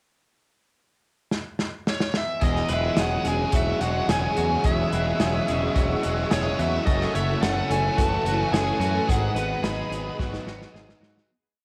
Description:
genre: rock, shoegaze and dream pop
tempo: 108 BPM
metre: 4/4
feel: straight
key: E major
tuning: A4 = 443 Hz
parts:
  - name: loose indie drum kit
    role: drums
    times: 1.3-11.3 s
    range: hi-hat, kick drum, snare drum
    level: -28 LUFS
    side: equal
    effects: none
  - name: biting lead guitar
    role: melody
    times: 1.9-10.2 s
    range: C#5 to B5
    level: -30 LUFS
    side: equal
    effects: overdrive, cassette tape, tape echo
  - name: twangy electric guitar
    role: arpeggios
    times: 2.4-11.3 s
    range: F#4 to C#5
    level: -37 LUFS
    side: equal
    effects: analog chorus, tape echo
  - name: biting overdriven guitar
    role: riff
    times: 2.4-11.3 s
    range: E2 to D#4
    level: -32 LUFS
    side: equal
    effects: reverse reverb
  - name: thick fuzz guitar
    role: riff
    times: 2.4-11.3 s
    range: F#2 to A4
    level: -34 LUFS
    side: equal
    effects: distortion, lush chorus
  - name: growling fingered electric bass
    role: bass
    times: 2.4-11.2 s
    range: E1 to G#2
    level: -31 LUFS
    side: equal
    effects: overdrive
  - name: string machine, cellos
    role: sustained chords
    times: 2.5-11.3 s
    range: G#4 to C#6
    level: -34 LUFS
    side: equal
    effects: phaser, ensemble chorus
room: studio reverb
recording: home recording on cassette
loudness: -24 LUFS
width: mono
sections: 0.2-2.4 pickup bar; 2.4-11.3 verse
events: drum fill 1.3-2.4, 10.2-11.3; fade-out 9.1-11.3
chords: 0.2 N.C.; 2.4 E69; 6.9 F#m7; 9.1 G#m7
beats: | 0.21 0.76 1.32 1.87 | 2.43 2.98 3.54 4.10 | 4.65 5.21 5.77 6.32 | 6.88 7.43 7.99 8.54 | 9.09 9.65 10.20 10.75

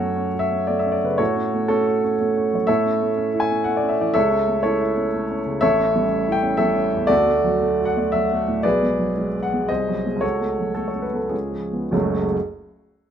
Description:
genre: classical, romantic character piece for solo piano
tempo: 94-125 BPM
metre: 3/4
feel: rubato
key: F# minor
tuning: A4 = 440 Hz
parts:
  - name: warm grand piano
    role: solo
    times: 0.0-12.4 s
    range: F#1 to G#5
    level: -18 LUFS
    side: equal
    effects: none
room: light reverb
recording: none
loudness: -18 LUFS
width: side -8 dB against mid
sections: 0.0-11.9 A section; 11.9-13.1 B section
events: slowing down 7.9-11.9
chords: 0.0 F#m; 1.2 F#m/A; 2.7 A; 4.2 A/C#; 5.6 A7; 7.1 D; 8.6 G#m7b5/B; 9.7 G#7/B#; 10.2 F#m/C#; 11.3 C#7; 11.9 F#m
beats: 0.17 0.68 | 1.20 1.70 2.19 | 2.68 3.17 3.66 | 4.16 4.64 5.13 | 5.62 6.11 6.59 | 7.10 7.62 8.14 | 8.64 9.16 9.69 | 10.22 10.76 11.33 | 11.94

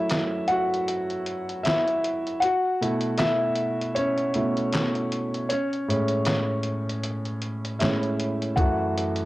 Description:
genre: lo-fi hip hop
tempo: 78 BPM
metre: 4/4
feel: swing 56% on 16ths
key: F# minor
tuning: A4 = 438 Hz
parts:
  - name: felt-muted upright piano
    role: accompaniment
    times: 0.0-9.3 s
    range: F#2 to F#5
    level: -24 LUFS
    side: equal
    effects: cassette tape, low-pass filter
  - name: lo-fi sampler-style drum kit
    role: drums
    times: 0.1-9.3 s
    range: handclaps, hi-hat, kick drum, snare drum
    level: -30 LUFS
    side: equal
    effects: cassette tape
room: moderate spring reverb, RT60 1.9 s, digital ambience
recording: home recording on cassette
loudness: -23 LUFS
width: side -18 dB against mid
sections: 0.0-9.3 A section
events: break 0.0-8.6; felt piano solo 0.0-9.3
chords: 0.0 F#m7; 2.4 B9sus4; 5.5 Amaj7; 8.6 F#m7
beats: 0.11 0.88 1.65 | 2.41 3.18 3.95 4.72 | 5.49 6.26 7.03 7.80 | 8.57

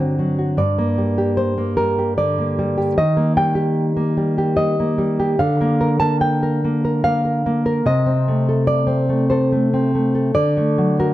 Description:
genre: romantic piece for solo classical guitar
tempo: 74 BPM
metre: 3/4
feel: rubato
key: G minor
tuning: A4 = 442 Hz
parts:
  - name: nylon-string guitar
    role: solo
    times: 0.0-11.1 s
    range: G2 to A5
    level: -16 LUFS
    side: equal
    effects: none
room: light reverb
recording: close, detailed microphones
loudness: -16 LUFS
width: side -15 dB against mid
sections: 0.0-11.1 A section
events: none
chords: 0.0 D7/G; 0.6 Gm; 3.0 Eb; 5.4 Bb/D; 7.9 Adim/C; 10.3 D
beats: | 0.61 1.41 2.20 | 3.00 3.79 4.61 | 5.42 6.22 7.04 | 7.85 8.67 9.51 | 10.35

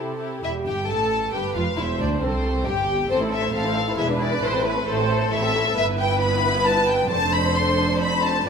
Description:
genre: quick classical-period movement for string orchestra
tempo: 134 BPM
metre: 3/4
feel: rubato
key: unclear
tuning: A4 = 440 Hz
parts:
  - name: warm symphonic violin section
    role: second line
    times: 0.0-8.5 s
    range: A3 to C5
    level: -26 LUFS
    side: left 2 dB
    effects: none
  - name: dark symphonic viola section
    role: accompaniment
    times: 0.0-8.5 s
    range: G4 to C5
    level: -26 LUFS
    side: right 2 dB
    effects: none
  - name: rich symphonic cello section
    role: bass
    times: 0.0-8.5 s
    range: C2 to C3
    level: -29 LUFS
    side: right 4 dB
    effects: none
  - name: rich studio violin section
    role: melody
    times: 0.4-8.5 s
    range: A4 to C6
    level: -24 LUFS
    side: left 4 dB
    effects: none
  - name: rich studio double bass section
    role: bass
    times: 0.4-8.5 s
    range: E1 to D2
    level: -28 LUFS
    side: right 2 dB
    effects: none
room: wet recital hall reverb, RT60 1.4 s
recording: minimal, uncompressed stereo recording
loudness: -19 LUFS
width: side -6 dB against mid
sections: 0.4-8.5 A section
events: none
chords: 0.4 Emadd11; 1.3 G7; 1.8 C/E; 3.1 Am; 4.0 E7; 4.4 Am; 5.8 Em/G; 7.1 Dm7/F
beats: | 0.43 0.88 1.33 | 1.78 2.22 2.66 | 3.10 3.55 3.99 | 4.43 4.88 5.32 | 5.77 6.21 6.66 | 7.10 7.55 8.00 | 8.46

